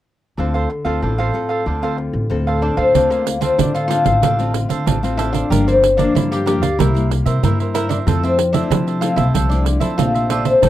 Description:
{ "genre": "samba and choro", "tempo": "94 BPM", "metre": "4/4", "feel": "straight", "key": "D minor", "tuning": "A4 = 440 Hz", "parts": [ { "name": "cavaquinho", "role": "accompaniment", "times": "0.4-10.7 s", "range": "D4 to G5", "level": "-24 LUFS", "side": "right 4 dB", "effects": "none" }, { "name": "nylon-string guitar", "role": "accompaniment", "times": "0.4-10.7 s", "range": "G2 to A4", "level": "-24 LUFS", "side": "left 4 dB", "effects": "none" }, { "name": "upright bass", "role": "bass", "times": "0.4-10.7 s", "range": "G1 to F3", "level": "-20 LUFS", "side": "equal", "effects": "none" }, { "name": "oud", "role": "melody", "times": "2.6-10.7 s", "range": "Bb3 to G4", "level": "-17 LUFS", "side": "left 3 dB", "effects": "none" }, { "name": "pandeiro", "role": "percussion", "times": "3.0-10.7 s", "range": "none", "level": "-21 LUFS", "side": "right 10 dB", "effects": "none" } ], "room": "light reverb", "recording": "dry, close 1970s-style studio recording", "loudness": "-15 LUFS", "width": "side -13 dB against mid", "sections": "0.4-2.9 A section; 2.9-10.7 B section", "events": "none", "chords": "0.4 Dm7; 5.5 Gm7; 6.8 C7; 8.1 Fmaj7", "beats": "| 0.38 1.02 1.67 2.31 | 2.95 3.59 4.23 4.87 | 5.51 6.15 6.79 7.43 | 8.07 8.71 9.35 9.99 | 10.63" }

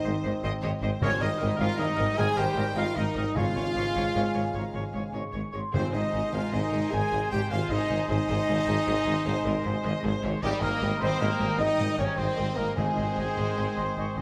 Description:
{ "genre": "cinematic, heroic adventure film score", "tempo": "102 BPM (dotted quarters)", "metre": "12/8", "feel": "straight", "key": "Ab major", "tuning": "A4 = 440 Hz", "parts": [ { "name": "clear studio violin section", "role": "melody", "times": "0.0-14.2 s", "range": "G4 to Ab5", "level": "-41 LUFS", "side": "equal", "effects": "none" }, { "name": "mellow clarinet", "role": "second line", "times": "0.0-14.2 s", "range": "G4 to Ab5", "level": "-40 LUFS", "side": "equal", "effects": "none" }, { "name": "rich symphonic violin section", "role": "second line", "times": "0.0-14.2 s", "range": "Ab4 to Eb5", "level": "-42 LUFS", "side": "equal", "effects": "none" }, { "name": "warm French horn section", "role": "sustained chords", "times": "0.0-14.2 s", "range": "G3 to Ab4", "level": "-34 LUFS", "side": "equal", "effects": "none" }, { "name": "warm trombone section", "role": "sustained chords", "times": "0.0-14.2 s", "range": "C3 to C4", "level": "-40 LUFS", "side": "equal", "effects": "none" }, { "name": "dark trumpet section", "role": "stabs", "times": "0.0-14.2 s", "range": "G4 to Ab5", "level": "-36 LUFS", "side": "equal", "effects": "none" }, { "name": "warm tuba", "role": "bass", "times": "0.0-14.2 s", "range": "Ab1", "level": "-37 LUFS", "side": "equal", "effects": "none" }, { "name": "bright oboe", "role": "second line", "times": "0.1-14.2 s", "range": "Bb4 to Eb5", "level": "-42 LUFS", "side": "equal", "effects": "none" }, { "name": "mellow small flute group", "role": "second line", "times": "0.1-14.2 s", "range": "G5 to Db6", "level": "-43 LUFS", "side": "equal", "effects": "none" }, { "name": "warm symphonic viola section", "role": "accompaniment", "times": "0.1-14.2 s", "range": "Ab4 to Eb5", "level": "-43 LUFS", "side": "equal", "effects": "none" }, { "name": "clear studio cello section", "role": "bass", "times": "0.1-14.2 s", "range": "Ab2", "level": "-36 LUFS", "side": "equal", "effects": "none" }, { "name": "clear symphonic double bass section", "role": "bass", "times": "0.1-14.2 s", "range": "Ab1", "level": "-36 LUFS", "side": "equal", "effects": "none" }, { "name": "timpani", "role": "percussion", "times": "1.0-6.3, 12.8-13.3 s", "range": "Ab2", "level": "-36 LUFS", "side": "equal", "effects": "none" } ], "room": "moderate recital hall reverb, RT60 1.4 s", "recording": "none", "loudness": "-27 LUFS", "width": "mono", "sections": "0.0-14.2 A section", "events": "none", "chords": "0.0 Cm/Ab; 1.0 Eb/Ab; 3.4 Db/Ab; 5.7 Ab; 10.4 Eb/Ab; 12.8 Ab", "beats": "0.44 | 1.02 1.60 2.18 2.77 | 3.36 3.96 4.55 5.14 | 5.74 6.33 6.92 7.51 | 8.10 8.68 9.26 9.85 | 10.43 11.01 11.59 12.18 | 12.78 13.37 13.97" }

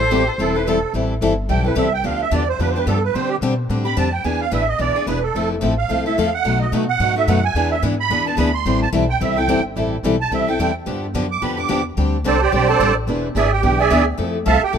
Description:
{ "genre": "acoustic string swing (jazz manouche)", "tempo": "218 BPM", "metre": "4/4", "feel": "swing 58% on 8ths", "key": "A minor", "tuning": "A4 = 438 Hz", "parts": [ { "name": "warm violin", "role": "melody", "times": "0.0-0.6 s", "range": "C5", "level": "-22 LUFS", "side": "left 1 dB", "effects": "none" }, { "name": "musette accordion", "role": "second line", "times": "0.0-14.8 s", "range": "G4 to D6", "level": "-20 LUFS", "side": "right 6 dB", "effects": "none" }, { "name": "picked steel-string acoustic guitar", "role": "accompaniment", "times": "0.0-14.8 s", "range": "B2 to A4", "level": "-22 LUFS", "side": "left 5 dB", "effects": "none" }, { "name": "picked steel-string acoustic guitar", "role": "accompaniment", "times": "0.0-14.8 s", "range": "B2 to B4", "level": "-26 LUFS", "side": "right 4 dB", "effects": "none" }, { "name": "upright bass", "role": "bass", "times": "0.0-14.8 s", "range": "E1 to D3", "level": "-22 LUFS", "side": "equal", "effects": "none" } ], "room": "light reverb", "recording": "minimal, uncompressed stereo recording", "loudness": "-16 LUFS", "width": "side -7 dB against mid", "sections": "0.9-9.8 A section; 9.8-14.8 A section", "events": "accordion solo 0.9-14.8", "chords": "0.0 Am7; 2.0 G7; 3.1 D7sus4; 4.3 E7; 5.4 Fmaj7; 6.5 B7; 7.6 E7; 8.7 Am7; 10.9 G7; 12.0 D7sus4; 13.1 E7; 14.2 Fmaj7", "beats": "0.12 0.39 0.67 | 0.94 1.22 1.50 1.77 | 2.05 2.32 2.60 2.87 | 3.15 3.42 3.70 3.98 | 4.25 4.53 4.80 5.08 | 5.35 5.63 5.91 6.18 | 6.46 6.73 7.01 7.28 | 7.56 7.83 8.11 8.39 | 8.66 8.94 9.21 9.49 | 9.77 10.04 10.32 10.59 | 10.87 11.15 11.42 11.70 | 11.98 12.25 12.53 12.80 | 13.08 13.36 13.63 13.91 | 14.19 14.46 14.74" }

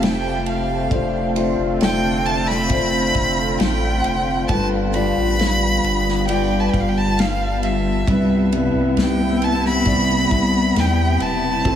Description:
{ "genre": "pop ballad", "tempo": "67 BPM", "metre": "4/4", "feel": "straight", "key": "C major", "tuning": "A4 = 440 Hz", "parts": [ { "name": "warm violin", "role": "melody", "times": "0.0-11.8 s", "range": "E5 to B5", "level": "-22 LUFS", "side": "right 2 dB", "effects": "analog delay" }, { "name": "dark baby grand piano", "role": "accompaniment", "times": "0.0-11.8 s", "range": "G2 to D5", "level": "-22 LUFS", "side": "left 2 dB", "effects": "none" }, { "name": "sweeping resonant pad", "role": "sustained chords", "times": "0.0-11.8 s", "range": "C3 to G4", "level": "-24 LUFS", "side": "equal", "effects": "chorus" }, { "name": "warm sub bass", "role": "bass", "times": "0.0-11.8 s", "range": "E1 to E2", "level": "-24 LUFS", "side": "equal", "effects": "none" }, { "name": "unplugged drum kit", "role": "drums", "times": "0.0-11.8 s", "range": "kick drum, ride cymbal, snare drum", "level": "-25 LUFS", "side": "left 1 dB", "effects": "none" }, { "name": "dark studio cello section", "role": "second line", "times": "8.1-11.8 s", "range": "B3 to C4", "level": "-23 LUFS", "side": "equal", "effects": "none" } ], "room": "moderate huge ambient reverb, RT60 8.8 s", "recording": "dreamy mix soaked in reverb, small room ambience", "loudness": "-16 LUFS", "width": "side -9 dB against mid", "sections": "0.0-11.8 A section", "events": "none", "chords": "0.0 Fmaj7; 0.9 Dm7/F; 4.5 G7; 8.1 Cmaj7", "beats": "0.02 | 0.91 1.81 2.70 3.60 | 4.49 5.39 6.28 7.18 | 8.07 8.97 9.87 10.76 | 11.66" }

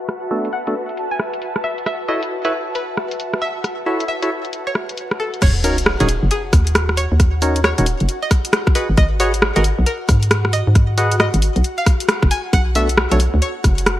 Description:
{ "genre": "UK garage, two-step garage", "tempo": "135 BPM", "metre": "4/4", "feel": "swing 63% on 16ths", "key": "Eb minor", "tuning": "A4 = 438 Hz", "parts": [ { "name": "string-like resonator pluck", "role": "melody", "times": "0.0-13.6 s", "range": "Ab4 to Ab5", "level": "-25 LUFS", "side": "equal", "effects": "chorus, digital delay" }, { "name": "ethereal airy pad", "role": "sustained chords", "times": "0.0-14.0 s", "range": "Gb4 to Gb5", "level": "-30 LUFS", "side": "equal", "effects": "ensemble chorus, built-in reverb, sidechain pumping" }, { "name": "ethereal airy pad", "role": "texture", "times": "0.0-5.4 s", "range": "F#4 to A5", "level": "-28 LUFS", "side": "left 1 dB", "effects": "ensemble chorus, built-in reverb, sidechain pumping" }, { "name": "garage drum kit", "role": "drums", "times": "0.1-14.0 s", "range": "crash cymbal, hi-hat, rim click", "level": "-19 LUFS", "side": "equal", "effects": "low-pass filter on hats, low-pass filter on snare, low-pass filter on cymbals" }, { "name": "percussive organ stab", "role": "stabs", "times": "0.3-13.2 s", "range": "A3 to Gb5", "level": "-22 LUFS", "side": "equal", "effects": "chorus" }, { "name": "hollow knocking FM bass", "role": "bass", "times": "5.4-14.0 s", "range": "Eb1 to Ab2", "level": "-17 LUFS", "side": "equal", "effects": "none" }, { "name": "electronic kick drum", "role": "drums", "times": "5.4-13.8 s", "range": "none", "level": "-14 LUFS", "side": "equal", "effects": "none" }, { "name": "sub drop", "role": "sound effects", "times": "5.5-7.2 s", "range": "none", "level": "-25 LUFS", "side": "equal", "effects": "none" } ], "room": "light reverb, digital ambience", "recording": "bright 1980s-style digital production, vinyl crackle, low-pass filter", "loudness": "-15 LUFS", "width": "side -14 dB against mid", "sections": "0.0-5.4 A section; 5.4-14.0 B section", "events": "filter sweep 0.0-5.4; drop 5.4-14.0; impact 5.4-7.2", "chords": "0.0 Bm7; 1.9 Gbm7; 5.4 Ebm7; 8.8 Abm7; 12.3 Bm7", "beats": "| 0.09 0.53 0.98 1.42 | 1.86 2.31 2.75 3.20 | 3.64 4.09 4.53 4.98 | 5.42 5.87 6.31 6.75 | 7.20 7.64 8.09 8.53 | 8.98 9.42 9.87 10.31 | 10.75 11.20 11.64 12.09 | 12.53 12.98 13.42 13.87" }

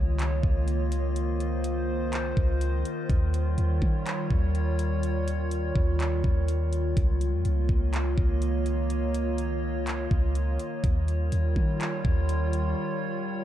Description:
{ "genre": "hip hop, atmospheric cloud-rap", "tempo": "124 BPM", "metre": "4/4", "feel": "half-time", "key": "Db lydian", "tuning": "A4 = 440 Hz", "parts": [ { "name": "warbly tape-like pad", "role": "sustained chords", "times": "0.0-13.4 s", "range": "Eb3 to Db5", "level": "-30 LUFS", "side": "equal", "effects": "chorus, built-in reverb, sidechain pumping" }, { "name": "clean 808-style bass", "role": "bass", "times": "0.0-12.7 s", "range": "Db2 to Eb3", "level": "-26 LUFS", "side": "equal", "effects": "none" }, { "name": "drifting glass-harmonics texture", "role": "texture", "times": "0.0-13.4 s", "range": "G3 to Eb5", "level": "-42 LUFS", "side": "left 2 dB", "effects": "chorus, built-in reverb" }, { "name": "trap drum kit", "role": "drums", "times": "0.2-12.6 s", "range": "handclaps, hi-hat, kick drum", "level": "-28 LUFS", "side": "equal", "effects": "none" } ], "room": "little or no reverb", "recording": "dark, warm production", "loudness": "-24 LUFS", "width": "side -12 dB against mid", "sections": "0.0-13.4 A section", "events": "break 12.8-13.4", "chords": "0.0 Db69; 3.1 Eb9; 7.0 Db69; 10.8 Eb9", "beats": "0.19 0.68 | 1.16 1.64 2.13 2.61 | 3.10 3.58 4.06 4.55 | 5.03 5.51 6.00 6.48 | 6.97 7.45 7.93 8.42 | 8.90 9.39 9.87 10.35 | 10.84 11.32 11.80 12.29 | 12.77 13.26" }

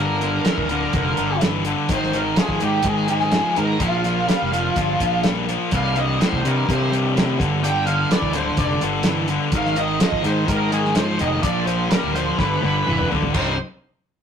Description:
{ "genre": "classic rock", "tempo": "126 BPM", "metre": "4/4", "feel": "straight", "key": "C minor", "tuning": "A4 = 440 Hz", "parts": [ { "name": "octave-fuzz lead guitar", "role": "melody", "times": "0.0-13.6 s", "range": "F4 to G5", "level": "-24 LUFS", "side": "right 1 dB", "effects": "wah, distortion" }, { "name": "overdriven electric guitar", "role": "riff", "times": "0.0-13.5 s", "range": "C2 to Eb4", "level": "-27 LUFS", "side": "right 7 dB", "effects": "none" }, { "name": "tight distorted guitar", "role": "riff", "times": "0.0-13.5 s", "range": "C2 to Eb4", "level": "-24 LUFS", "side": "left 7 dB", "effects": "distortion" }, { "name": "overdriven fingered electric bass", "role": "bass", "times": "0.0-13.6 s", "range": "C1 to C3", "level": "-24 LUFS", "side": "equal", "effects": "none" }, { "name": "cloth-damped thuddy drum kit", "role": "drums", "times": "0.2-13.5 s", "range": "crash cymbal, hi-hat, kick drum, snare drum, toms", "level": "-22 LUFS", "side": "equal", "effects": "none" }, { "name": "bright tonewheel organ", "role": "sustained chords", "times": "5.7-13.7 s", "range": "none", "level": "barely audible", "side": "none", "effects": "none" } ], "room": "light reverb", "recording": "rough rehearsal-room recording, tube saturation", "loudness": "-18 LUFS", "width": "side -7 dB against mid", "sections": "0.0-13.3 A section", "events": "drum fill 12.4-13.3", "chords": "0.0 Gm; 1.9 Ab5; 3.8 Bb5; 5.7 Cm; 7.4 Gm; 9.5 Ab; 11.4 Bb; 12.4 G; 13.3 Cm", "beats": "0.46 0.94 1.42 | 1.90 2.37 2.85 3.33 | 3.81 4.29 4.76 5.24 | 5.72 6.20 6.67 7.15 | 7.63 8.10 8.58 9.06 | 9.53 10.01 10.49 10.96 | 11.44 11.92 12.39 12.87 | 13.35" }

